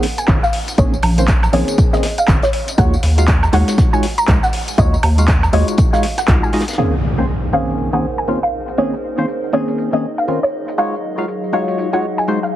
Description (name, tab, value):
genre	deep house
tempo	120 BPM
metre	4/4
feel	swing 60% on 16ths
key	Bb minor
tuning	A4 = 439 Hz
part	soft round pluck	melody	0.0-12.6 s	Db5 to Bb5	-21 LUFS	equal	ensemble chorus, analog delay
part	percussive organ stab	stabs	0.0-12.4 s	Eb3 to F5	-20 LUFS	equal	chorus, phaser, sidechain pumping, analog delay
part	damped 70s drum kit	drums	0.0-6.8 s	hi-hat, snare drum	-31 LUFS	left 1 dB	high-pass filter on hats, high-pass filter on snare, high-pass filter on room
part	deep house drum kit	drums	0.0-12.5 s	crash cymbal, handclaps, hi-hat, tambourine, woodblock	-23 LUFS	right 1 dB	overdrive, low-pass filter on hats, low-pass filter on perc, low-pass filter on snare, low-pass filter on cymbals
part	rubbery square bass	bass	0.3-6.4 s	Ab1 to Eb2	-15 LUFS	equal	sidechain pumping
part	electronic kick drum	drums	0.3-6.4 s	none	-15 LUFS	equal	none
part	warbly tape-like pad	sustained chords	7.4-12.6 s	Gb3 to F5	-25 LUFS	equal	chorus, built-in reverb, sidechain pumping
part	impact	sound effects	6.8-8.8 s	none	-21 LUFS	equal	none
room	light reverb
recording	heavily compressed radio sound, multiband compression, cassette tape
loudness	-13 LUFS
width	side -13 dB against mid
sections	0.0-6.8 A section; 6.8-12.6 B section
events	impact 6.8-8.8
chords	0.0 Bbm11; 2.5 Ebm11; 6.8 Bbm11; 10.5 Ebm11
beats	0.28 | 0.78 1.28 1.78 2.28 | 2.78 3.28 3.78 4.28 | 4.78 5.28 5.78 6.28 | 6.78 7.28 7.78 8.28 | 8.78 9.28 9.78 10.28 | 10.78 11.28 11.78 12.28